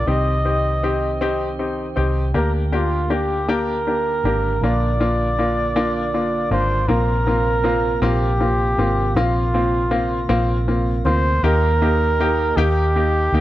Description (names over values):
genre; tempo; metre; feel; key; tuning
six-eight pop ballad; 53 BPM (dotted quarters); 6/8; straight; unclear; A4 = 440 Hz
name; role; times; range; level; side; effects
warm flugelhorn; melody; 0.0-13.4 s; F4 to Eb5; -22 LUFS; right 1 dB; tape echo
mellow tonewheel organ; sustained chords; 0.0-13.4 s; C3 to G4; -29 LUFS; right 3 dB; overdrive, slow rotary speaker
vintage muted fingered electric bass; bass; 0.0-13.4 s; Ab1 to Eb2; -21 LUFS; equal; none
clear upright piano; accompaniment; 0.1-13.4 s; Bb3 to G4; -22 LUFS; left 2 dB; none
room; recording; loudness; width
light reverb, small room reverb; none; -17 LUFS; side -14 dB against mid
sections
0.0-6.9 A section; 6.9-13.4 B section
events
none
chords
0.1 Cm; 2.3 Gm/D; 4.6 Bb; 6.9 Bbsus2; 11.4 Eb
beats
| 0.08 1.21 | 2.35 3.48 | 4.62 5.75 | 6.89 8.03 | 9.16 10.29 | 11.43 12.56